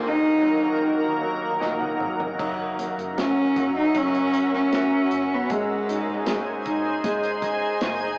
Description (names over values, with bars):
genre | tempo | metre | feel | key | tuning
pop ballad | 77 BPM | 4/4 | straight | unclear | A4 = 440 Hz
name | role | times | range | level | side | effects
warm cello | melody | 0.0-6.7 s | G#3 to D#4 | -25 LUFS | equal | none
bright baby grand piano | accompaniment | 0.0-8.2 s | D#2 to F#5 | -32 LUFS | equal | none
shimmering ambient pad | sustained chords | 0.0-8.2 s | D#2 to G#5 | -29 LUFS | equal | chorus, built-in reverb
modern studio drum kit | drums | 1.6-8.0 s | crash cymbal, hi-hat, kick drum, snare drum, toms | -34 LUFS | equal | none
vintage muted fingered electric bass | bass | 2.4-8.2 s | E1 to G#1 | -50 LUFS | equal | none
room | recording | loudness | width
moderate stone room reverb, RT60 1.2 s | rough rehearsal-room recording, small speaker sound | -24 LUFS | mono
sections
0.0-2.4 A section; 2.4-8.2 B section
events
grand piano fill 1.2-2.4; drum fill 1.6-2.4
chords
0.0 D#m; 2.4 F#7; 5.5 G#